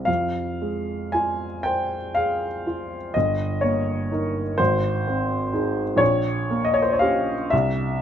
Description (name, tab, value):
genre	classical, romantic nocturne for solo piano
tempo	37-43 BPM (dotted quarters)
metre	6/8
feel	rubato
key	F minor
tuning	A4 = 440 Hz
part	warm upright piano	solo	0.0-8.0 s	G1 to Ab5	-21 LUFS	equal	none
room	light reverb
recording	none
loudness	-21 LUFS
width	side -9 dB against mid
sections	0.0-8.0 A section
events	none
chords	0.1 Fm; 3.1 Eb/G; 4.6 Ab; 6.0 Gdim/Bb; 7.5 C